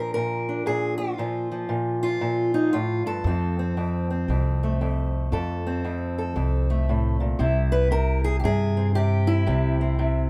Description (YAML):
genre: acoustic country blues, solo or duo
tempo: 116 BPM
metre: 4/4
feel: swing 63% on 8ths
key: F major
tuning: A4 = 439 Hz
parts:
  - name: fingerpicked steel-string acoustic guitar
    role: melody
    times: 0.0-10.3 s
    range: F2 to B4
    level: -27 LUFS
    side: equal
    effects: none
  - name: upright bass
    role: bass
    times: 3.2-10.3 s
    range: C2 to G2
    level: -25 LUFS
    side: equal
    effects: none
room: moderate booth ambience, RT60 0.2 s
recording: none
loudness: -24 LUFS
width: mono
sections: 0.0-10.3 A section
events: none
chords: 0.0 Bb; 3.3 F; 7.4 C